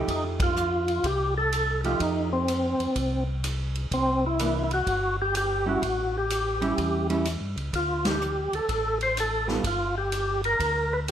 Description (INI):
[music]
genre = soul jazz organ trio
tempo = 126 BPM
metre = 4/4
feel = swing 66% on 8ths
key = unclear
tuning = A4 = 440 Hz
[part]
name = vintage hollow-body jazz guitar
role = accompaniment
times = 0.0-9.6 s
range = E3 to A4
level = -29 LUFS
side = right 3 dB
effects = none
[part]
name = mellow tonewheel organ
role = bass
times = 0.0-11.1 s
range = G1 to G2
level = -30 LUFS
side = equal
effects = slow rotary speaker
[part]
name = percussive tonewheel organ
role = melody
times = 0.1-11.1 s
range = C4 to C5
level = -26 LUFS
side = equal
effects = slow rotary speaker, overdrive, chorus vibrato
[part]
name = swinging big-band drum kit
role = drums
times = 0.1-11.1 s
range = hi-hat, kick drum, ride cymbal, snare drum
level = -33 LUFS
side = equal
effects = none
[sound]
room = light reverb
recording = none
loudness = -24 LUFS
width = side -10 dB against mid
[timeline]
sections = 0.0-11.1 A section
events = band accent 0.3, 8.0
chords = 0.0 F9; 3.9 C9; 5.8 A7; 7.7 Dm; 9.6 G5